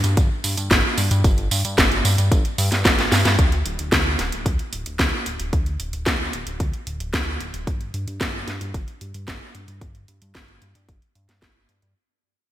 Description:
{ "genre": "italo disco", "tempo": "112 BPM", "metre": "4/4", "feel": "straight", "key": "unclear", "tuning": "A4 = 440 Hz", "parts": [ { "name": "chorused synth bass", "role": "bass", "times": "0.0-11.9 s", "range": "D1 to G2", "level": "-24 LUFS", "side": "equal", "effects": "none" }, { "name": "house drum kit", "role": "drums", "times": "0.0-11.9 s", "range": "hi-hat, snare drum, tambourine", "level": "-22 LUFS", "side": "equal", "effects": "small room reverb, gated reverb" }, { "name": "electronic kick drum", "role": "drums", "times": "0.2-11.5 s", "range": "none", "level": "-22 LUFS", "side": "equal", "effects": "small room reverb" } ], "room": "light reverb, digital ambience", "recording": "bright 1980s-style digital production", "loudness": "-19 LUFS", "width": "side -13 dB against mid", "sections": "0.0-3.4 A section; 3.4-12.0 B section", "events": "drum fill 3.0-3.4; fade-out 3.4-12.0", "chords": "none" }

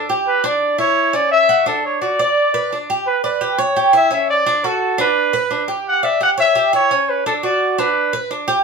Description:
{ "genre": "latin", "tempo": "172 BPM", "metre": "4/4", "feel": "straight", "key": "unclear", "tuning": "A4 = 441 Hz", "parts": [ { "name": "warm trumpet", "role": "melody", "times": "0.0-8.2 s", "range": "A4 to F#5", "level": "-16 LUFS", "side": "equal", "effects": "none" }, { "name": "Cuban tres", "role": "arpeggios", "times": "0.0-8.6 s", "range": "C#4 to D5", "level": "-18 LUFS", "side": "right 2 dB", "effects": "none" } ], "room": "moderate studio ambience, RT60 0.5 s", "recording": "band playing live in one room", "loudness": "-14 LUFS", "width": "side -4 dB against mid", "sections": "0.0-3.1 A section; 3.1-8.6 B section", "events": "none", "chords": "0.3 Em7; 1.0 C#madd11; 1.7 D; 2.4 G; 3.8 C#dim; 4.5 D; 5.2 G; 5.9 Em13/G; 6.6 C#m7b5; 7.3 D; 8.0 G" }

